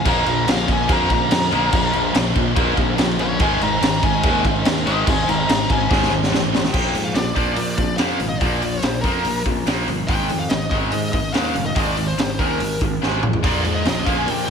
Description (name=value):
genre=hard rock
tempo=144 BPM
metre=4/4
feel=straight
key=Bb mixolydian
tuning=A4 = 445 Hz
part: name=smooth overdriven lead guitar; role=melody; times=0.0-14.5 s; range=Bb4 to Bb5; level=-24 LUFS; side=left 2 dB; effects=slapback echo, digital delay
part: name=cranked stack guitar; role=riff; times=0.0-14.5 s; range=Ab2 to Bb3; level=-25 LUFS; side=right 11 dB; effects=overdrive, slapback echo
part: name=distorted electric guitar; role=riff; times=0.0-6.7, 13.4-14.5 s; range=Ab2 to Bb4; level=-25 LUFS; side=right 1 dB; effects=overdrive, slapback echo
part: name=tight distorted guitar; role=riff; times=0.0-14.5 s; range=Ab2 to Bb3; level=-25 LUFS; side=left 11 dB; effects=distortion
part: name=fuzz fingered electric bass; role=bass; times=0.0-14.5 s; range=F1 to Bb2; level=-25 LUFS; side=equal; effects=overdrive
part: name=raw garage drum kit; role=drums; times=0.1-14.5 s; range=crash cymbal, hi-hat, kick drum, snare drum, toms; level=-21 LUFS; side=equal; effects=none
room=moderate lush hall reverb, RT60 1.8 s, small room reverb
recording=big arena sound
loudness=-17 LUFS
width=side -6 dB against mid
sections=0.0-6.7 A section; 6.7-14.5 B section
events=lead electric guitar solo 0.0-6.7; drum fill 5.9-6.7, 13.0-13.4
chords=0.1 Bb; 3.4 Ab; 6.7 Bb5; 10.1 Ab5; 13.4 Bb